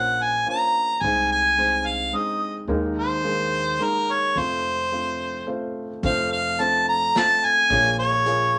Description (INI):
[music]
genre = acoustic folk-pop ballad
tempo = 108 BPM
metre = 3/4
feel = straight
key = unclear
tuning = A4 = 439 Hz
[part]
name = clear harmonica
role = melody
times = 0.0-8.6 s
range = Bb4 to Bb5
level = -22 LUFS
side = equal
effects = none
[part]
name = felt-muted upright piano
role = accompaniment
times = 0.0-8.6 s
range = F1 to Db5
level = -31 LUFS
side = equal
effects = none
[part]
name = upright bass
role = bass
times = 0.0-8.6 s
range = Bb1 to F2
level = -35 LUFS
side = equal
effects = none
[part]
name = unplugged drum kit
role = drums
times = 6.0-8.4 s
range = hi-hat, kick drum, snare drum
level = -31 LUFS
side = equal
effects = none
[sound]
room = moderate studio reverb, RT60 0.5 s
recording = none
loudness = -22 LUFS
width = mono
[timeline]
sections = 0.0-6.0 A section; 6.0-8.6 B section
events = none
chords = 0.0 Bbmadd9; 1.0 Ab/C; 2.7 Ebsus4; 4.4 F; 7.7 Bbm7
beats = 0.47 | 1.03 1.58 2.14 | 2.69 3.25 3.80 | 4.36 4.92 5.48 | 6.04 6.60 7.15 | 7.71 8.27